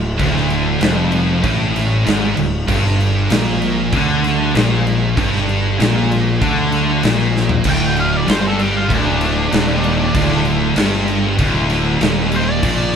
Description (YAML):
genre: stoner and doom metal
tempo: 96 BPM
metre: 4/4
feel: straight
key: unclear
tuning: A4 = 440 Hz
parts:
  - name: heavy high-gain guitar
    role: riff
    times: 0.0-13.0 s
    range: D2 to D3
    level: -22 LUFS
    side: right 2 dB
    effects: distortion
  - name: thick fuzz guitar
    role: riff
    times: 0.0-13.0 s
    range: D2 to D3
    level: -19 LUFS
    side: left 6 dB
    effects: distortion
  - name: thick fuzz guitar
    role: riff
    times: 0.0-13.0 s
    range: D2 to D3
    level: -21 LUFS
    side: right 9 dB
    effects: distortion
  - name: fuzz fingered electric bass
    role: bass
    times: 0.0-13.0 s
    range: D1 to D2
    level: -21 LUFS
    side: equal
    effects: overdrive
  - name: big rock drum kit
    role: drums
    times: 0.2-13.0 s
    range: crash cymbal, kick drum, snare drum, toms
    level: -20 LUFS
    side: equal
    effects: none
  - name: octave-fuzz lead guitar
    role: melody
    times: 7.7-13.0 s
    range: D4 to G5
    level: -21 LUFS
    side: equal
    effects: wah, distortion
room: light reverb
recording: band playing live in one room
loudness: -13 LUFS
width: side -7 dB against mid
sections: 0.0-7.7 A section; 7.7-13.0 B section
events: drum fill 7.4-7.7; lead electric guitar solo 7.7-13.0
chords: 0.0 Dm; 2.7 G5; 7.7 F7sus2/D (rootless)